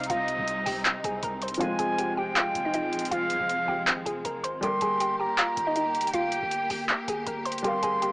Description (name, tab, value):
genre	hip hop, trap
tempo	159 BPM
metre	4/4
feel	half-time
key	unclear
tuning	A4 = 440 Hz
part	hollow square pluck	melody	0.0-8.1 s	Eb4 to C6	-31 LUFS	equal	chorus
part	reedy silver concert flute	second line	0.0-8.1 s	Eb5 to C6	-29 LUFS	right 1 dB	cassette tape, tape echo
part	warm grand piano	accompaniment	0.0-8.1 s	C3 to F5	-35 LUFS	left 1 dB	cassette tape
part	rich studio string section	sustained chords	0.0-8.1 s	C3 to G4	-35 LUFS	equal	cassette tape
part	hard-hitting 808-style bass	bass	0.0-8.1 s	Eb1 to C2	-44 LUFS	equal	none
part	trap drum kit	drums	0.0-8.1 s	handclaps, hi-hat	-28 LUFS	equal	overdrive, cassette tape
room	light reverb, small room ambience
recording	home recording on cassette, small speaker sound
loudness	-25 LUFS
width	side -25 dB against mid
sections	0.0-8.1 A section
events	none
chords	0.0 Cm; 1.6 Fmadd9; 4.6 Gm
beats	| 0.10 0.47 0.85 1.23 | 1.61 1.98 2.36 2.74 | 3.12 3.49 3.87 4.25 | 4.62 5.00 5.38 5.76 | 6.13 6.51 6.89 7.27 | 7.64 8.02